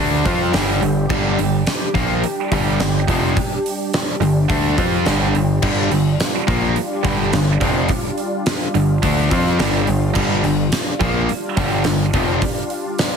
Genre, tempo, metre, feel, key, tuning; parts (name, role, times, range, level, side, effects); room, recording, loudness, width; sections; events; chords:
hard rock; 106 BPM; 4/4; straight; G minor; A4 = 442 Hz
analog string pad; sustained chords; 0.0-13.2 s; G3 to G4; -26 LUFS; equal; ensemble chorus
sludgy distorted guitar; riff; 0.0-12.4 s; F2 to F4; -21 LUFS; left 11 dB; overdrive
tight distorted guitar; riff; 0.0-12.4 s; F2 to F4; -21 LUFS; right 12 dB; distortion
growling picked electric bass; bass; 0.0-12.4 s; F1 to F2; -22 LUFS; equal; overdrive
gated 80s drum kit; drums; 0.3-13.1 s; crash cymbal, hi-hat, kick drum, snare drum; -22 LUFS; equal
studio ambience; heavily compressed radio sound, multiband compression; -16 LUFS; side -6 dB against mid
0.0-13.2 A section
0.0 Gm